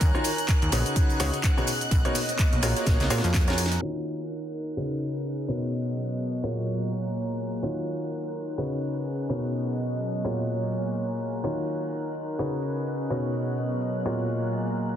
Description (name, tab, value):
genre	piano house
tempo	126 BPM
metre	4/4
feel	swing 58% on 16ths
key	Eb minor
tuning	A4 = 440 Hz
part	string machine, violins	sustained chords	0.0-15.0 s	Gb6	-38 LUFS	equal	ensemble chorus, vintage 12-bit sampler grit, sidechain pumping
part	plucky analog bass	bass	0.0-3.8 s	Bb1 to Bb2	-26 LUFS	equal	sidechain pumping
part	electronic kick drum	drums	0.0-3.5 s	none	-23 LUFS	equal	none
part	house drum kit	drums	0.0-14.9 s	cabasa, handclaps, hi-hat, snare drum	-31 LUFS	equal	none
part	tight funk drum kit	drums	0.0-3.8 s	ride cymbal, snare drum	-39 LUFS	right 4 dB	none
part	tambourine	percussion	0.0-3.8 s	none	-40 LUFS	left 3 dB	none
part	airy breathy pad	texture	0.0-15.0 s	F#3 to Bb5	-32 LUFS	right 1 dB	chorus, sidechain pumping
part	clear grand piano	riff	0.1-15.0 s	Bb2 to Db5	-29 LUFS	left 1 dB	sidechain pumping, low-pass filter, dub echo
room	light reverb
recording	dense, heavily limited modern master, low-pass filter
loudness	-25 LUFS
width	side -10 dB against mid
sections	0.0-3.8 A section; 3.8-15.0 B section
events	drum fill 2.9-3.8; band accent 3.7; filter sweep on string machine 3.8-15.0; filter sweep 3.8-15.0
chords	0.0 Ebm9; 1.0 Db9sus4; 1.7 Bmaj9; 2.6 Gbmaj9/Bb; 3.8 Ebm9; 4.8 Db9sus4; 5.5 Bmaj9; 6.4 Gbmaj9/Bb; 7.6 Ebm9; 8.6 Db9sus4; 9.3 Bmaj9; 10.2 Gbmaj9/Bb; 11.4 Ebm9; 12.4 Db9sus4; 13.1 Bmaj9; 14.1 Gbmaj9/Bb